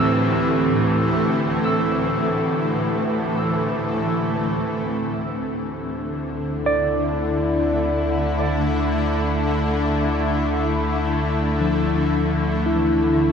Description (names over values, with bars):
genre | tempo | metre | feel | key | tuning
ambient | free time | none | none | unclear | A4 = 440 Hz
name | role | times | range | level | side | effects
shimmering ambient pad | sustained chords | 0.0-13.3 s | D2 to E4 | -20 LUFS | equal | chorus, built-in reverb
barky tine electric piano | arpeggios | 0.0-13.3 s | E3 to E6 | -25 LUFS | equal | phaser, diffuse ambient delay
warm sub bass | bass | 4.6-13.3 s | D2 | -27 LUFS | equal | none
room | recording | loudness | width
wet huge ambient reverb, RT60 7.7 s | none | -19 LUFS | side -6 dB against mid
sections
0.0-4.6 A section; 4.6-13.3 B section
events
none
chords
0.0 Am/D; 4.6 Dm7